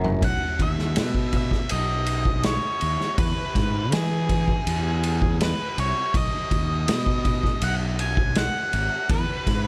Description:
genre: psychedelic rock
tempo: 81 BPM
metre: 4/4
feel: straight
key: unclear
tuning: A4 = 440 Hz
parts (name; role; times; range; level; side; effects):
- fuzz fingered electric bass; bass; 0.0-9.7 s; F#1 to E3; -28 LUFS; equal; overdrive
- vintage drum kit; drums; 0.0-9.6 s; kick drum, ride cymbal, snare drum, toms; -27 LUFS; equal; none
- octave-fuzz lead guitar; melody; 0.2-9.7 s; G#4 to G#5; -30 LUFS; equal; distortion, tape echo
room: light reverb, small room reverb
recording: none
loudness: -24 LUFS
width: mono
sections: 0.2-9.7 A section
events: drum fill 0.0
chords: 0.2 B; 3.2 E; 6.1 B; 9.1 E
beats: | 0.23 0.97 1.71 2.45 | 3.19 3.93 4.67 5.41 | 6.14 6.88 7.62 8.36 | 9.10

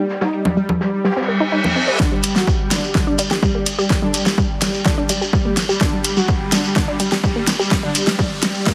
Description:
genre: melodic techno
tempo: 126 BPM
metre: 4/4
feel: straight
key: G harmonic minor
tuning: A4 = 441 Hz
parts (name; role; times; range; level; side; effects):
- soft supersaw; melody; 0.0-8.7 s; Bb2 to G4; -25 LUFS; equal; tape echo
- unison pluck; arpeggios; 0.0-8.7 s; G3 to C5; -24 LUFS; equal; cassette tape, sidechain pumping, digital delay
- jazz brush drum kit; drums; 0.1-2.0 s; hi-hat, shaker, snare drum; -30 LUFS; equal; sidechain pumping on hats, high-pass filter on hats, low-pass filter on hats, high-pass filter on snare, low-pass filter on snare, sidechain pumping on perc, high-pass filter on perc, low-pass filter on perc, high-pass filter on room, low-pass filter on room
- deep house drum kit; drums; 0.5-8.7 s; congas, hi-hat, snare drum; -23 LUFS; equal; overdrive, sidechain pumping on perc, sidechain pumping on hats
- reverse cymbal and riser; sound effects; 1.2-8.7 s; none; -29 LUFS; equal; none
- electronic kick drum; drums; 2.0-8.7 s; none; -22 LUFS; equal; overdrive
- shekere; percussion; 2.0-8.7 s; none; -28 LUFS; equal; none
room: light reverb, studio reverb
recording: heavily compressed radio sound, high-pass filter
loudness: -18 LUFS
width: mono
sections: 0.0-2.0 A section; 2.0-8.7 B section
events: filter sweep on drum 0.0-2.0; reverse cymbal 1.2-2.0; build-up 2.0-8.7; drum fill 2.0-8.7; filter sweep on synth arpeggio sound 2.0-8.7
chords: 0.0 Cm7; 2.0 G5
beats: | 0.09 0.57 1.05 1.52 | 2.00 2.48 2.95 3.43 | 3.90 4.38 4.86 5.33 | 5.81 6.28 6.76 7.24 | 7.71 8.19 8.66

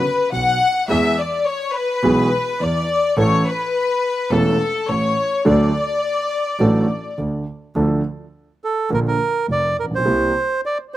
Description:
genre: tango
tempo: 105 BPM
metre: 4/4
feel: rubato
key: D major, D minor from 7.8 s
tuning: A4 = 440 Hz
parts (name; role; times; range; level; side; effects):
- clear studio violin section; second line; 0.0-7.2 s; A4 to F#5; -19 LUFS; left 3 dB; none
- dark concert grand piano; accompaniment; 0.3-10.3 s; E1 to A4; -19 LUFS; right 1 dB; none
- clear double bass; bass; 0.3-10.3 s; E1 to E2; -24 LUFS; right 2 dB; none
- bandoneon; melody; 8.6-11.0 s; A4 to D5; -19 LUFS; right 3 dB; slapback echo
room: little or no reverb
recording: recorded outdoors, with no room sound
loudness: -17 LUFS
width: side -14 dB against mid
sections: 0.0-7.8 A section; 7.8-11.0 B section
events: violin section solo 0.0-7.8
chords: 0.0 B5; 0.9 E; 3.2 A; 5.5 D; 7.8 Dm; 8.9 Bb; 10.1 C7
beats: 0.32 | 0.89 1.47 2.04 2.61 | 3.18 3.75 4.32 4.89 | 5.46 6.03 6.61 7.18 | 7.76 8.34 8.91 9.48 | 10.06 10.63

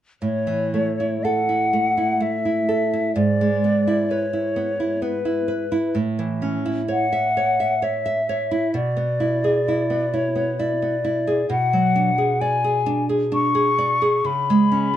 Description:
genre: romantic duo for flute and classical guitar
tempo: 65 BPM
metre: 3/4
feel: rubato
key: A major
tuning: A4 = 440 Hz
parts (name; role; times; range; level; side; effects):
- hollow concert flute; melody; 0.2-15.0 s; B4 to C#6; -22 LUFS; left 3 dB; slapback echo
- nylon-string guitar; accompaniment; 0.2-15.0 s; G#2 to E5; -21 LUFS; right 2 dB; none
room: light reverb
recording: dark, warm production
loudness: -19 LUFS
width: side -11 dB against mid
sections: 0.2-15.0 A section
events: none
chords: 0.2 A; 3.2 E7/G#; 6.0 A; 8.7 E7/B; 11.5 G#m7b5/B; 14.3 C#7(no3)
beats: | 0.23 1.26 2.21 | 3.16 4.10 5.03 | 5.97 6.91 7.83 | 8.75 9.67 10.58 | 11.48 12.41 13.33 | 14.26

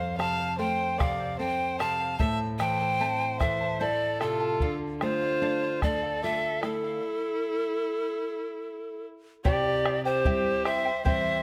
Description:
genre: andean folk, Andean ensemble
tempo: 74 BPM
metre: 3/4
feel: straight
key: unclear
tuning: A4 = 441 Hz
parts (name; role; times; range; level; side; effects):
- breathy reedy pan flute; melody; 0.0-11.4 s; A4 to A5; -31 LUFS; equal; none
- warm violin; second line; 0.0-11.4 s; E4 to F5; -36 LUFS; equal; none
- charango; accompaniment; 0.0-11.4 s; E4 to A5; -38 LUFS; equal; none
- nylon-string guitar; accompaniment; 0.0-11.4 s; F2 to F4; -36 LUFS; equal; none
- bombo; percussion; 0.2-11.2 s; none; -33 LUFS; equal; none
room: light reverb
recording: close, detailed microphones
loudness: -28 LUFS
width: mono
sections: 0.0-9.4 A section; 9.4-11.4 B section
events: stop 7.0-9.4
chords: 0.0 F; 2.2 Am; 4.6 Dm; 7.0 N.C.; 9.4 C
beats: 0.59 1.40 | 2.20 3.01 3.81 | 4.62 5.42 6.23 | 7.03 7.84 8.64 | 9.45 10.25 11.06

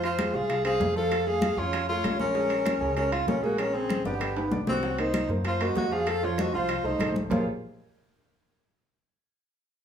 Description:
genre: Afro-Cuban jazz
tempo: 194 BPM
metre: 4/4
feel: straight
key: Bb minor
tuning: A4 = 440 Hz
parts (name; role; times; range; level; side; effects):
- breathy tenor saxophone; melody; 0.0-7.5 s; Bb3 to A4; -28 LUFS; left 1 dB; slapback echo, plate reverb
- breathy bright jazz flute; second line; 0.0-7.5 s; F4 to F5; -34 LUFS; right 2 dB; none
- warm upright piano; accompaniment; 0.0-7.5 s; Db3 to Ab5; -33 LUFS; right 3 dB; none
- upright bass; bass; 0.0-7.4 s; G1 to Gb2; -34 LUFS; equal; none
- bongos; percussion; 0.0-7.4 s; none; -38 LUFS; left 6 dB; none
- congas; percussion; 0.0-7.4 s; none; -32 LUFS; left 1 dB; none
- timbales; percussion; 0.0-7.4 s; none; -34 LUFS; right 4 dB; none
room: moderate studio reverb, RT60 0.8 s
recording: small room reverb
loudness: -24 LUFS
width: side -8 dB against mid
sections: 0.0-4.8 A section; 4.8-7.3 B section; 7.3-8.5 C section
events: drum fill 3.6-4.8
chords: 0.0 Fm; 1.1 Faug; 2.4 Bbm9; 4.2 G; 4.8 Cm7b5; 6.1 F7; 7.3 Bbm9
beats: 0.19 0.50 0.81 | 1.11 1.42 1.73 2.04 | 2.35 2.66 2.97 3.28 | 3.59 3.90 4.21 4.52 | 4.83 5.14 5.45 5.76 | 6.07 6.38 6.69 7.00 | 7.31

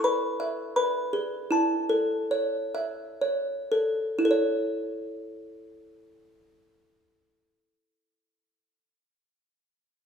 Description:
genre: children's music, lullaby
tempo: 55-85 BPM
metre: 3/4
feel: rubato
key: A major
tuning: A4 = 440 Hz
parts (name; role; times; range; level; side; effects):
- music box; solo; 0.0-7.7 s; E4 to B5; -25 LUFS; equal; none
room: wet recital hall reverb, RT60 1.5 s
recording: recorded in a church or concert hall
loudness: -25 LUFS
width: side -7 dB against mid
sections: 0.0-4.3 A section; 4.3-10.1 B section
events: slowing down 0.0-4.3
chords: 0.0 E; 1.5 A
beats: 0.05 0.76 | 1.51 2.31 3.22 | 4.25 5.34 6.41 | 7.47

